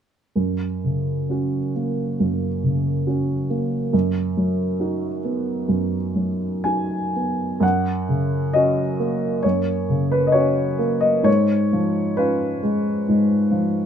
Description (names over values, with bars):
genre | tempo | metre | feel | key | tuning
classical, romantic nocturne for solo piano | 66 BPM | 4/4 | uneven beats, rubato | F# major | A4 = 440 Hz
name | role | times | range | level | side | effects
warm baby grand piano | solo | 0.4-13.9 s | F#2 to G#5 | -19 LUFS | equal | none
room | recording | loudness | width
light reverb | dark, warm production | -19 LUFS | side -8 dB against mid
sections
0.4-7.6 A section; 7.6-13.9 B section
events
none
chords
0.4 F#; 3.9 B/F#; 7.6 F#; 11.3 C#7/G#